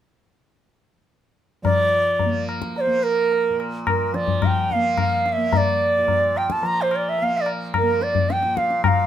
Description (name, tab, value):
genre	indian classical, Hindustani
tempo	108 BPM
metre	7/4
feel	straight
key	Bb raga yaman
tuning	A4 = 440 Hz
part	bright reedy bansuri	melody	1.6-9.1 s	Bb4 to Bb5	-20 LUFS	right 2 dB	none
part	tanpura	drone	1.6-9.1 s	Bb2 to Bb3	-29 LUFS	right 2 dB	none
part	tabla	percussion	1.6-9.0 s	none	-24 LUFS	left 5 dB	none
room	moderate studio reverb, RT60 0.6 s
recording	minimal, uncompressed stereo recording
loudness	-18 LUFS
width	side -10 dB against mid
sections	1.6-9.1 A section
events	none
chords	none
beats	| 1.65 2.21 2.76 3.32 3.87 4.42 4.98 | 5.53 6.08 6.64 7.19 7.74 8.29 8.84